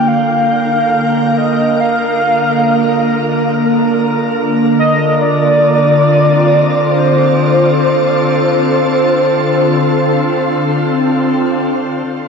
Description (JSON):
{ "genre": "ambient", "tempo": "70 BPM", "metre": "4/4", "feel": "straight", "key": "unclear", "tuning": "A4 = 440 Hz", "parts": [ { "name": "warm velvety synth lead", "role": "melody", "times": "0.0-11.2 s", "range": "C5 to F5", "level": "-14 LUFS", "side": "equal", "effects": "chorus, tape echo" }, { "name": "soft additive organ-like pad", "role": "sustained chords", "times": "0.0-12.3 s", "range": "D3 to Bb4", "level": "-13 LUFS", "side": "equal", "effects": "ensemble chorus, built-in reverb" } ], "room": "wet shimmer reverb, RT60 9.0 s", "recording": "cassette tape", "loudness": "-10 LUFS", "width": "side -5 dB against mid", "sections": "0.0-12.1 A section", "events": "none", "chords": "0.0 Bb; 5.2 F6", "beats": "0.08 0.93 | 1.79 2.65 3.50 4.36 | 5.22 6.08 6.93 7.79 | 8.65 9.51 10.36 11.22 | 12.08" }